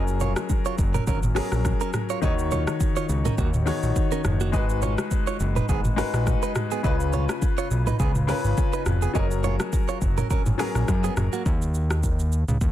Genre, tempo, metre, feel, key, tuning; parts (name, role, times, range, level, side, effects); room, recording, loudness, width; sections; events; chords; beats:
afrobeats; 104 BPM; 4/4; swing 55% on 16ths; A4 = 440 Hz
warm concert grand piano; accompaniment; 0.0-11.5 s; Db3 to Db5; -28 LUFS; left 5 dB
direct-recorded clean electric guitar; riff; 0.0-11.4 s; Bb3 to Eb5; -31 LUFS; right 10 dB; ping-pong delay
fat analog bass; bass; 0.0-12.7 s; F1 to Gb2; -24 LUFS; equal
afro-pop drum kit; drums; 0.1-12.7 s; hi-hat, kick drum, rim click, shaker, toms; -25 LUFS; equal; soft clipping on snare
congas and bongos; percussion; 0.2-11.3 s; -35 LUFS; left 2 dB
digital ambience; dense, heavily limited modern master; -21 LUFS; side -12 dB against mid
0.0-11.5 A section; 11.5-12.7 B section
0.0 Gbadd9; 6.8 Db7; 9.1 Gbadd9; 11.5 Eb5
0.50 1.07 1.65 | 2.23 2.80 3.38 3.96 | 4.53 5.11 5.69 6.26 | 6.84 7.42 8.00 8.57 | 9.15 9.73 10.30 10.88 | 11.46 12.03 12.61